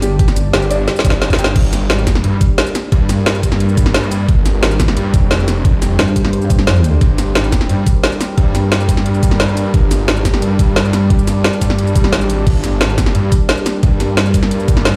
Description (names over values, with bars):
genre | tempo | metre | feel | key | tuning
dark technical drum and bass | 176 BPM | 4/4 | straight | G phrygian | A4 = 440 Hz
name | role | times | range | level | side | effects
deep dark ambient pad | sustained chords | 0.0-15.0 s | G3 to D5 | -23 LUFS | equal | chorus, built-in reverb, sidechain pumping
felt-muted upright piano | arpeggios | 0.0-1.4 s | G4 to G5 | -25 LUFS | equal | sidechain pumping, tape echo
pulsing pluck wobble bass | bass | 0.0-0.5, 6.0-7.0 s | G1 to G2 | -16 LUFS | equal | chorus
drum and bass drum kit | drums | 0.0-15.0 s | crash cymbal, hi-hat, shaker, snare drum | -20 LUFS | equal | overdrive
electronic kick drum | drums | 0.2-14.8 s | none | -16 LUFS | equal | overdrive
snarling distorted saw bass | bass | 0.5-15.0 s | F1 to G2 | -19 LUFS | equal | distortion, overdrive, sidechain pumping
swell | sound effects | 12.0-12.5 s | none | -28 LUFS | equal | none
room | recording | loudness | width
light reverb, digital ambience | played on a big sound system in a bare room, large studio reverb | -14 LUFS | mono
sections
0.0-1.6 A section; 1.6-15.0 A section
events
drop 0.0-1.6, 1.6-15.0; drum fill 0.9-1.6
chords
0.0 G5; 1.6 Gm